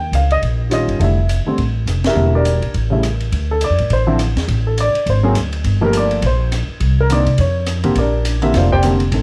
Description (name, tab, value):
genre	jazz piano trio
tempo	207 BPM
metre	4/4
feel	swing 60% on 8ths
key	F major, D minor from 3.3 s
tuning	A4 = 440 Hz
part	dark baby grand piano	melody	0.0-9.2 s	C#3 to G5	-20 LUFS	equal	none
part	upright bass	bass	0.0-9.2 s	E1 to C3	-19 LUFS	equal	none
part	open jazz drum kit	drums	0.1-9.2 s	hi-hat, kick drum, ride cymbal, rim click, snare drum	-28 LUFS	equal	cassette tape
room	studio ambience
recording	home recording on cassette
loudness	-16 LUFS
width	mono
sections	0.0-3.3 A section; 3.3-9.2 B section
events	band accent 2.0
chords	0.0 Eb9; 1.0 Fmaj13; 2.2 Em7b5; 2.7 N.C.; 3.3 D7(no3); 4.5 Asus4; 5.1 G#; 5.6 Gm9; 6.8 Cm9; 7.4 F; 8.0 Bb69